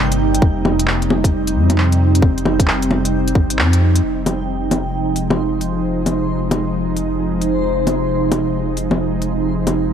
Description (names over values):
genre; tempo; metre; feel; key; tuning
future garage; 133 BPM; 4/4; swing 64% on 16ths; F minor; A4 = 440 Hz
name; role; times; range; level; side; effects
ethereal airy pad; sustained chords; 0.0-9.9 s; C3 to Eb4; -19 LUFS; right 2 dB; ensemble chorus, built-in reverb, sidechain pumping
dark detuned saw bass; bass; 0.0-9.9 s; F1 to F2; -20 LUFS; equal; sidechain pumping
backwards swelling texture; texture; 0.0-9.9 s; C5 to G5; -28 LUFS; left 4 dB; built-in reverb
organic electronic drum kit; drums; 0.1-9.8 s; bongos, handclaps, hi-hat; -19 LUFS; left 2 dB; none
electronic kick drum; drums; 0.4-3.5 s; none; -14 LUFS; equal; none
room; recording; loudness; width
light reverb; none; -15 LUFS; side -8 dB against mid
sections
0.0-4.0 A section; 4.0-9.9 B section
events
band accent 3.6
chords
0.0 Cm7/F; 4.0 Fm7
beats
| 0.42 0.87 1.32 1.77 | 2.23 2.68 3.13 3.58 | 4.03 4.48 4.93 5.38 | 5.83 6.29 6.74 7.19 | 7.64 8.09 8.54 8.99 | 9.44 9.89